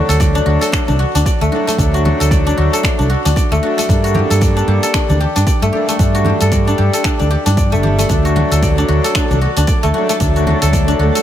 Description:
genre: organic downtempo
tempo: 114 BPM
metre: 4/4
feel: swing 59% on 16ths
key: D major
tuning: A4 = 440 Hz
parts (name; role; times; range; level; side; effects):
- pedal harmonium; accompaniment; 0.0-11.2 s; F#3 to A4; -20 LUFS; equal; vintage 12-bit sampler grit, sidechain pumping, digital delay
- guzheng; arpeggios; 0.0-11.2 s; A3 to D5; -18 LUFS; left 2 dB; digital delay
- fretless electric bass; bass; 0.1-11.1 s; G1 to G2; -15 LUFS; equal; none
- deep house drum kit; drums; 0.1-11.2 s; finger snaps, hi-hat, shaker; -23 LUFS; left 1 dB; none
- congas; percussion; 0.1-10.9 s; none; -25 LUFS; equal; none
- electronic kick drum; drums; 0.2-10.9 s; none; -16 LUFS; equal; none
- twinkling granular texture; texture; 8.8-11.2 s; A3 to A4; -25 LUFS; equal; built-in reverb
room: digital ambience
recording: none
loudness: -12 LUFS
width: side -11 dB against mid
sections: 0.0-11.2 A section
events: none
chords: 0.0 D; 3.9 Gmadd9; 8.1 D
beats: 0.20 0.73 1.26 | 1.78 2.31 2.84 3.36 | 3.89 4.42 4.94 5.47 | 5.99 6.52 7.05 7.57 | 8.10 8.62 9.15 9.68 | 10.20 10.73

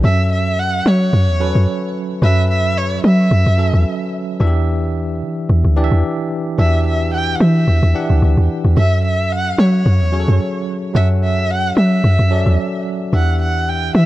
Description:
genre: amapiano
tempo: 110 BPM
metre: 4/4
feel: swing 55% on 16ths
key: F# phrygian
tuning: A4 = 440 Hz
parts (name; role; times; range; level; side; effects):
- bell-like tine electric piano; accompaniment; 0.0-14.1 s; E3 to F#5; -21 LUFS; right 1 dB; medium stereo tremolo
- deep log drum bass; bass; 0.0-14.1 s; D2 to F#3; -14 LUFS; equal; none
- dark erhu; melody; 0.1-14.1 s; C#5 to G5; -21 LUFS; right 1 dB; digital delay
room: studio ambience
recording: dark, warm production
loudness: -13 LUFS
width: side -16 dB against mid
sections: 0.0-14.1 A section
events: drop 0.0-14.1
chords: 0.0 F#m7; 4.4 Em7; 8.8 F#m7; 13.1 Em7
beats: | 0.04 0.58 1.13 1.68 | 2.22 2.77 3.31 3.86 | 4.40 4.95 5.49 6.04 | 6.58 7.13 7.68 8.22 | 8.77 9.31 9.86 10.40 | 10.95 11.49 12.04 12.59 | 13.13 13.68

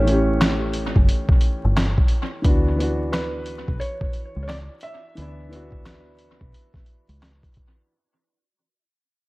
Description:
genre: lo-fi hip hop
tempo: 88 BPM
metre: 4/4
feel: swing 62% on 16ths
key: D major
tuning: A4 = 440 Hz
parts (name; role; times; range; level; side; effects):
- felt-muted upright piano; melody; 0.0-7.2 s; B4 to E5; -32 LUFS; right 1 dB; low-pass filter, tape echo
- warm upright piano; accompaniment; 0.0-7.9 s; E3 to G4; -25 LUFS; equal; low-pass filter, tape echo
- deep dub fingered electric bass; bass; 0.0-7.4 s; F#1 to D2; -24 LUFS; equal; none
- dusty soul sampler-style drum kit; drums; 0.1-7.8 s; handclaps, hi-hat, kick drum, snare drum; -20 LUFS; equal; tape echo
room: light reverb, small room reverb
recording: echo-heavy mix, vinyl crackle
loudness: -19 LUFS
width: side -22 dB against mid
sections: 0.0-7.9 A section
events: fade-out 0.0-7.9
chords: 0.0 A7; 2.4 D69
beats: 0.40 1.08 1.76 | 2.45 3.13 3.81 4.49 | 5.17 5.86 6.54 7.22

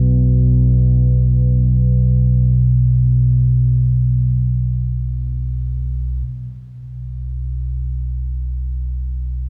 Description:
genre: ambient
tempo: free time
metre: none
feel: none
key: unclear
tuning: A4 = 445 Hz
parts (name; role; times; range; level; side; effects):
- deep rumbling drone; drone; 0.0-9.5 s; B1 to B2; -17 LUFS; equal; built-in reverb, subtle chorus
room: moderate huge ambient reverb, RT60 7.7 s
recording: studio ambience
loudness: -17 LUFS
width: mono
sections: 0.0-6.3 A section; 6.3-9.5 B section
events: none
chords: none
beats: free time

